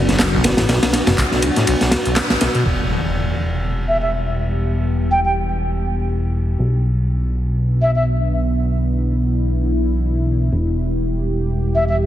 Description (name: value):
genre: breakbeat, breaks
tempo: 122 BPM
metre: 4/4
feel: swing 56% on 16ths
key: E minor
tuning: A4 = 440 Hz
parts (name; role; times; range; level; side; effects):
- dark analog pad; sustained chords; 0.0-12.1 s; B3 to G4; -24 LUFS; equal; chorus, sidechain pumping
- deep acid bass; riff; 0.0-2.6 s; A1 to B2; -22 LUFS; equal; vintage 12-bit sampler grit, ping-pong delay
- fat analog bass; bass; 0.0-12.1 s; E1 to B1; -19 LUFS; equal; none
- crunchy breakbeat drum kit; drums; 0.1-2.5 s; kick drum, ride cymbal, snare drum; -20 LUFS; equal; none
- punchy analog drum machine; drums; 0.1-2.6 s; handclaps, hi-hat; -25 LUFS; equal; low-pass filter on hats, low-pass filter on snare, low-pass filter on room
- impact; sound effects; 2.7-4.6 s; none; -24 LUFS; equal; none
- breathy concert flute; melody; 3.9-8.0, 11.8-12.0 s; E5 to G5; -21 LUFS; equal; AM radio sound, ping-pong delay
room: light reverb, studio ambience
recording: heavily compressed radio sound, multiband compression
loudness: -16 LUFS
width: side -12 dB against mid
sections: 0.0-2.7 A section; 2.7-12.1 B section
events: band accent 2.2; impact 2.7-4.6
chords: 0.0 Bm; 2.7 Em; 6.6 Bm; 10.5 Em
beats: 0.20 | 0.69 1.18 1.67 2.17 | 2.66 3.15 3.64 4.13 | 4.62 5.12 5.61 6.10 | 6.59 7.08 7.58 8.07 | 8.56 9.05 9.54 10.03 | 10.53 11.02 11.51 12.00